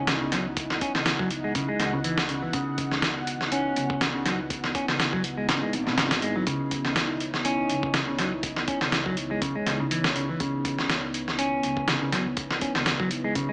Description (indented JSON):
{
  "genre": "breakbeat, breaks",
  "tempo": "122 BPM",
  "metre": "4/4",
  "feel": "swing 55% on 16ths",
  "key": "C# minor",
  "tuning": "A4 = 440 Hz",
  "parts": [
    { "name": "dark analog pad", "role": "sustained chords", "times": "0.0-13.5 s", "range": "B3 to F#5", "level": "-35 LUFS", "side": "equal", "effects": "chorus, vintage 12-bit sampler grit, sidechain pumping" },
    { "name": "semi-hollow electric guitar", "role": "riff", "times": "0.0-13.5 s", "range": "B2 to C#4", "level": "-32 LUFS", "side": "equal", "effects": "digital delay" },
    { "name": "upright bass", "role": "bass", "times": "0.0-13.5 s", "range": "G#1 to C#2", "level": "-39 LUFS", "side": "equal", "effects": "none" },
    { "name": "dusty soul sampler-style drum kit", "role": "drums", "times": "0.1-13.5 s", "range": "hi-hat, kick drum, snare drum", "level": "-29 LUFS", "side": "equal", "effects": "none" }
  ],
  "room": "light reverb, digital ambience",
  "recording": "vinyl crackle, small speaker sound",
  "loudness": "-27 LUFS",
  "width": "mono",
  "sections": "0.0-13.5 A section",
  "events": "none",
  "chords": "0.0 C#m9"
}